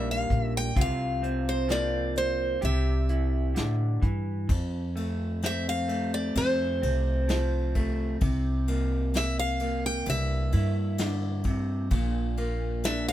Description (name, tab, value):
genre	acoustic folk-pop ballad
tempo	65 BPM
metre	4/4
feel	straight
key	F major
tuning	A4 = 441 Hz
part	picked steel-string acoustic guitar	melody	0.0-13.1 s	C5 to G5	-30 LUFS	equal	none
part	electric guitar through a small old amp	accompaniment	0.0-13.1 s	F2 to G4	-31 LUFS	equal	none
part	upright bass	bass	0.0-13.1 s	Bb1 to A2	-28 LUFS	equal	none
part	soft brush drum kit	drums	0.3-13.1 s	hi-hat, kick drum, ride cymbal, snare drum	-31 LUFS	left 1 dB	none
room	little or no reverb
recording	close, detailed microphones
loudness	-25 LUFS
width	side -12 dB against mid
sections	0.0-4.5 A section; 4.5-13.1 B section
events	none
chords	0.0 Gm/Bb; 0.8 C7sus4; 2.6 C; 4.5 F; 8.2 C7; 11.9 Bb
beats	| 0.77 1.70 2.63 3.56 | 4.50 5.43 6.36 7.29 | 8.22 9.15 10.07 11.00 | 11.92 12.85